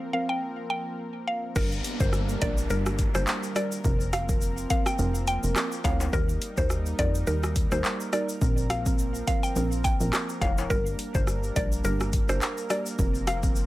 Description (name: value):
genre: dancehall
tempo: 105 BPM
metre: 4/4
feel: swing 56% on 16ths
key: G minor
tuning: A4 = 439 Hz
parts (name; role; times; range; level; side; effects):
- deep mellow chord stab; accompaniment; 0.0-13.7 s; F3 to Bb4; -33 LUFS; right 3 dB; chorus
- warm analog pad; sustained chords; 0.0-13.7 s; F3 to Bb4; -37 LUFS; equal; chorus, sidechain pumping
- mallet-like synth pluck; melody; 0.1-13.4 s; Bb4 to G5; -32 LUFS; left 1 dB; chorus, tape echo
- plucky analog bass; bass; 1.6-13.7 s; F1 to F2; -29 LUFS; equal; none
- afro-pop drum kit; drums; 1.6-13.7 s; crash cymbal, handclaps, hi-hat, kick drum, rim click, shaker; -27 LUFS; equal; none
- tube shaker and timbales; percussion; 1.6-13.7 s; none; -40 LUFS; left 6 dB; none
- downlifter; sound effects; 1.6-6.1 s; none; -40 LUFS; equal; none
room: digital ambience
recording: none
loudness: -24 LUFS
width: side -17 dB against mid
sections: 0.0-1.6 A section; 1.6-13.7 B section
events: break 0.4-1.6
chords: 0.0 Bbsus2; 1.6 Gm; 3.8 Fsus4; 6.1 Eb; 8.4 Bbsus2; 10.7 Gm; 13.0 Fsus4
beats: 0.42 0.99 | 1.56 2.13 2.70 3.27 | 3.84 4.42 4.99 5.56 | 6.13 6.70 7.27 7.84 | 8.42 8.99 9.56 10.13 | 10.70 11.27 11.84 12.42 | 12.99 13.56